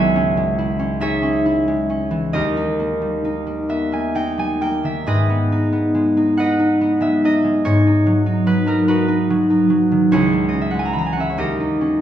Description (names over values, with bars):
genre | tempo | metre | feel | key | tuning
classical, solo harp piece | 43-49 BPM (dotted quarters) | 6/8 | rubato | G# minor | A4 = 437 Hz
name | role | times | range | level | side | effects
concert harp | solo | 0.0-12.0 s | C#2 to B5 | -16 LUFS | equal | none
room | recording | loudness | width
wet recital hall reverb, RT60 1.4 s | heard from further back in the room | -16 LUFS | side -10 dB against mid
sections
0.0-12.0 A section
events
none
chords
0.0 C#m; 2.3 D#; 5.0 G#m; 7.6 B/G#; 10.1 C#m; 11.4 D#7